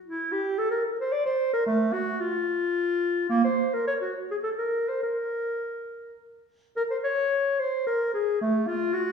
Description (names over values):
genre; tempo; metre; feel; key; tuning
classical, baroque-style fantasia for unaccompanied clarinet; 101-113 BPM; 3/4; rubato; Bb minor; A4 = 440 Hz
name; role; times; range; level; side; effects
mellow clarinet; solo; 0.1-9.1 s; A3 to D5; -24 LUFS; equal; none
room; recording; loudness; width
wet recital hall reverb, RT60 1.5 s; heard from further back in the room, studio reverb; -24 LUFS; side -6 dB against mid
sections
0.0-6.8 A section; 6.8-9.1 B section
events
none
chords
none